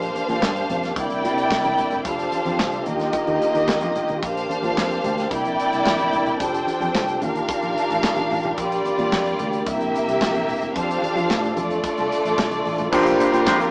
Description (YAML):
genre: disco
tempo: 110 BPM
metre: 4/4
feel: straight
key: F major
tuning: A4 = 438 Hz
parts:
  - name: warm symphonic violin section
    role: second line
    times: 0.0-13.7 s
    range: G3 to G5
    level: -25 LUFS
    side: equal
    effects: none
  - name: tonewheel organ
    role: sustained chords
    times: 0.0-13.7 s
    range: C3 to A4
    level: -29 LUFS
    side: equal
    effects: overdrive, chorus vibrato, slow rotary speaker
  - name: fingered electric bass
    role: bass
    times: 0.0-13.7 s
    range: E1 to F3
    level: -33 LUFS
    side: equal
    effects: none
  - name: modern studio drum kit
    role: drums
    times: 0.0-13.6 s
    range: crash cymbal, handclaps, hi-hat, kick drum, snare drum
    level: -29 LUFS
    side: equal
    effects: none
  - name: congas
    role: percussion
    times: 0.2-12.9 s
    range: none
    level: -38 LUFS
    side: equal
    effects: none
  - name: clear baby grand piano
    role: accompaniment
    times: 12.9-13.7 s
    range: C4 to G4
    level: -22 LUFS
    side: equal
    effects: none
  - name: mellow electric guitar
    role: accompaniment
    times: 12.9-13.6 s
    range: Bb3 to C5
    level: -23 LUFS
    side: equal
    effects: none
  - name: tube shaker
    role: percussion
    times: 12.9-13.7 s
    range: none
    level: -48 LUFS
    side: equal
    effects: none
room: wet stone room reverb, RT60 1.0 s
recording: band playing live in one room, small speaker sound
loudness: -22 LUFS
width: mono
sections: 0.0-12.9 A section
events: none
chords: 0.0 Bb69; 1.0 C9; 2.1 F69; 2.9 Ebmaj9; 4.2 Bb69; 5.3 C9; 6.4 F69; 7.2 Ebmaj9; 8.6 Bb6; 9.7 C9; 10.8 F69; 11.6 F6; 12.9 Bb69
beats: 0.42 0.97 1.51 | 2.06 2.60 3.14 3.69 | 4.23 4.77 5.32 5.86 | 6.41 6.95 7.49 8.04 | 8.58 9.12 9.67 10.21 | 10.76 11.30 11.84 12.38 | 12.93 13.47